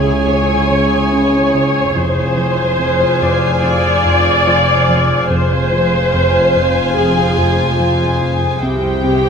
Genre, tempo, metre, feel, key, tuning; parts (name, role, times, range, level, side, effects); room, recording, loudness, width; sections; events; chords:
cinematic, suspense film score; 72 BPM; 4/4; straight; A4 = 439 Hz
dark studio violin section; melody; 0.0-9.3 s; G5 to G#5; -21 LUFS; left 2 dB
warm symphonic violin section; second line; 0.0-9.3 s; E4 to C#5; -22 LUFS; left 3 dB
dark symphonic viola section; accompaniment; 0.0-9.3 s; G4 to D5; -16 LUFS; equal
drifting glass-harmonics texture; sustained chords; 0.0-9.3 s; E4 to F5; -24 LUFS; left 1 dB; chorus, built-in reverb
fat analog bass; riff; 0.0-9.3 s; F2 to C#4; -21 LUFS; right 1 dB
dark symphonic double bass section; bass; 0.0-9.3 s; F1 to C#2; -20 LUFS; right 2 dB
warm symphonic cello section; bass; 0.0-9.3 s; C#2 to C3; -22 LUFS; right 1 dB
metallic inharmonic drone; drone; 0.0-9.3 s; C2 to F2; -27 LUFS; equal
Celtic harp; texture; 3.2-9.3 s; C5 to D5; -30 LUFS; left 4 dB
wet recital hall reverb, RT60 1.8 s; lossy compression artefacts; -11 LUFS; side -6 dB against mid
0.0-9.3 A section
0.0 C#m; 2.0 Fm; 8.6 C